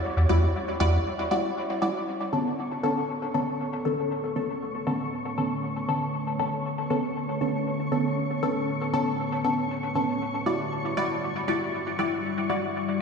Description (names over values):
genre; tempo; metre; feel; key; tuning
dub techno; 118 BPM; 4/4; straight; B minor; A4 = 440 Hz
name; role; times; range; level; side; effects
filtered dub chord stab; stabs; 0.0-12.7 s; D3 to D5; -26 LUFS; equal; chorus, phaser, dub echo
flickering grainy texture; texture; 0.0-13.0 s; C#5 to C#6; -37 LUFS; left 2 dB; built-in reverb
warm sub bass; bass; 0.2-1.0 s; E2; -21 LUFS; equal; none
deep dark ambient pad; sustained chords; 3.1-13.0 s; D3 to D5; -32 LUFS; left 1 dB; chorus, built-in reverb
room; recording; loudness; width
wet lush hall reverb, RT60 2.5 s; played on a big sound system in a bare room, stone room reverb, nothing above 10.3 kHz; -25 LUFS; side -5 dB against mid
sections
0.0-2.1 A section; 2.1-13.0 B section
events
break 1.1-2.1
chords
0.0 Em9; 2.1 Bm9; 10.2 Em9